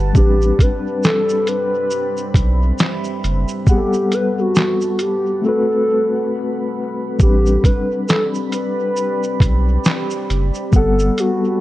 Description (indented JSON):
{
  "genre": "lo-fi hip hop",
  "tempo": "68 BPM",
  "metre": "4/4",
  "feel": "swing 57% on 16ths",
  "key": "A dorian",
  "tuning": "A4 = 440 Hz",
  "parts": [
    { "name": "mellow reed electric piano", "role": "accompaniment", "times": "0.0-11.6 s", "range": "G3 to F#5", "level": "-22 LUFS", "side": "left 3 dB", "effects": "fast tremolo, cassette tape, dub echo" },
    { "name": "deep dark ambient pad", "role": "sustained chords", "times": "0.0-11.6 s", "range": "G3 to B5", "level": "-26 LUFS", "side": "right 1 dB", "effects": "chorus, built-in reverb" },
    { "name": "saturated sub bass", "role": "bass", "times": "0.0-11.1 s", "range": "F#1 to B1", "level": "-16 LUFS", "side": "equal", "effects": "none" },
    { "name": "lo-fi sampler-style drum kit", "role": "drums", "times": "0.1-11.4 s", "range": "handclaps, hi-hat, kick drum, shaker, snare drum", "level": "-16 LUFS", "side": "equal", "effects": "none" },
    { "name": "warbly nostalgic lead", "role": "melody", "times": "0.2-11.6 s", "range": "F#4 to B4", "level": "-20 LUFS", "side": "equal", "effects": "chorus, dub echo" }
  ],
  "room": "light reverb",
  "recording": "echo-heavy mix, cassette tape",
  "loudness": "-15 LUFS",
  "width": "side -16 dB against mid",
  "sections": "0.0-7.2 A section; 7.2-11.6 A section",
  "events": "drums muted 5.4-7.2",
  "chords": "0.1 Am11 (rootless); 3.7 Gmaj9; 5.4 Am69; 7.2 Am11 (rootless); 10.7 Gmaj9"
}